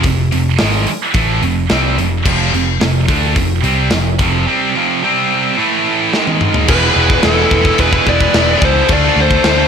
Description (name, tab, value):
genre	heavy metal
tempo	108 BPM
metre	4/4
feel	straight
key	unclear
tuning	A4 = 440 Hz
part	high-gain distorted guitar	riff	0.0-9.7 s	F2 to D4	-17 LUFS	right 13 dB	distortion
part	scooped high-gain guitar	riff	0.0-9.7 s	F2 to F4	-18 LUFS	left 15 dB	distortion
part	picked electric bass	bass	0.0-9.6 s	E1 to D2	-17 LUFS	left 1 dB	none
part	tight metal drum kit	drums	0.0-9.6 s	crash cymbal, hi-hat, kick drum, snare drum, toms	-16 LUFS	left 1 dB	none
part	high-gain lead guitar	melody	6.7-9.7 s	A4 to D5	-15 LUFS	left 3 dB	distortion
part	high-gain lead guitar	second line	6.7-9.7 s	E4 to B4	-22 LUFS	right 3 dB	distortion, digital delay
part	raw garage guitar	riff	6.7-9.7 s	E2 to D4	-21 LUFS	right 2 dB	overdrive
room	little or no reverb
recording	blown-out, overdriven recording, overdrive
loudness	-11 LUFS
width	side -7 dB against mid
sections	0.0-6.7 A section; 6.7-9.7 B section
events	drum fill 6.1-6.7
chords	0.0 F5; 5.0 C5; 5.6 A5; 6.1 G#5; 6.7 E; 8.9 Dm